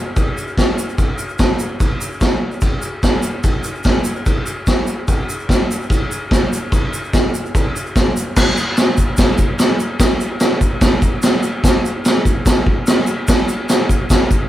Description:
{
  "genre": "rock",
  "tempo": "146 BPM",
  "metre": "4/4",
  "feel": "straight",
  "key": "none",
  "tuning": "none",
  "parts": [
    { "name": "vintage drum kit", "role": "drums", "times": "0.2-14.4 s", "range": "crash cymbal, kick drum, snare drum", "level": "-14 LUFS", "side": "equal", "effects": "none" },
    { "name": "egg shaker", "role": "percussion", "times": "0.2-14.4 s", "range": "none", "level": "-30 LUFS", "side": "right 2 dB", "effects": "none" }
  ],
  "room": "moderate studio reverb, RT60 0.9 s",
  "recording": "band playing live in one room",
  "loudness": "-14 LUFS",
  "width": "side -13 dB against mid",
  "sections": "0.0-8.4 A section; 8.4-14.5 B section",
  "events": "none",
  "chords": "none"
}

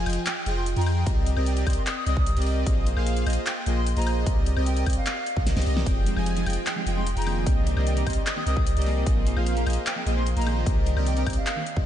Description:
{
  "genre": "future bass",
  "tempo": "150 BPM",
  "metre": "4/4",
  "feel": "half-time",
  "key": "C minor",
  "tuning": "A4 = 440 Hz",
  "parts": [
    { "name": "airy dreamy lead", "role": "arpeggios", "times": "0.0-11.9 s", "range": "Eb5 to Ab5", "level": "-36 LUFS", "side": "equal", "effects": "chorus, sidechain pumping, ping-pong delay" },
    { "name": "soft supersaw", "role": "riff", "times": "0.0-11.9 s", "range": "F3 to Ab5", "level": "-30 LUFS", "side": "equal", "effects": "vintage 12-bit sampler grit, sidechain pumping, ping-pong delay" },
    { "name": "long sustained 808-style bass", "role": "bass", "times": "0.0-11.9 s", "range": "F1 to F2", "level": "-25 LUFS", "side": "equal", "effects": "sidechain pumping" },
    { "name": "big-room dance drum kit", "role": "drums", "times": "0.1-11.7 s", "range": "handclaps, hi-hat, snare drum, woodblock", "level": "-32 LUFS", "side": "left 2 dB", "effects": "small room ambience" },
    { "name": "bright wooden flute", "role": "melody", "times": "0.3-11.8 s", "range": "F5 to Eb6", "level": "-35 LUFS", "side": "equal", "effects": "sidechain pumping, ping-pong delay" },
    { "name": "electronic kick drum", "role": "drums", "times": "1.1-11.8 s", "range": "none", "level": "-25 LUFS", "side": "equal", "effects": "small room ambience" },
    { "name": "clean electric guitar", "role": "accompaniment", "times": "6.1-11.6 s", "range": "Eb3 to Bb4", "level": "-34 LUFS", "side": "right 2 dB", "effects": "wide subtle chorus, sidechain pumping, ping-pong delay" }
  ],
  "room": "light reverb, digital ambience",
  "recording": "nothing above 10.7 kHz",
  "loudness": "-22 LUFS",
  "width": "side -11 dB against mid",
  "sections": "0.0-11.9 A section",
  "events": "drum fill 5.5-5.9",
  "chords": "0.0 Fm7; 1.1 Cm7; 2.7 Bb7sus4; 4.3 Cm7; 5.9 Fm7; 7.5 Cm7; 9.1 Bb7sus4; 10.7 Cm7"
}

